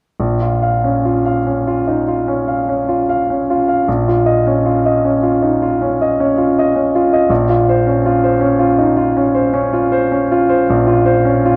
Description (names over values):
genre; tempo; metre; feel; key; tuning
classical, impressionist solo piano; 46-55 BPM (dotted quarters); 9/8; rubato; Bb minor; A4 = 440 Hz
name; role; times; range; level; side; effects
clear grand piano; solo; 0.2-11.6 s; Bb1 to F5; -14 LUFS; equal; none
room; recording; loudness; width
wet scoring stage reverb, RT60 1.5 s; dark, warm production; -15 LUFS; mono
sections
0.2-11.6 A section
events
none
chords
0.2 Bbm; 7.3 Bbmadd9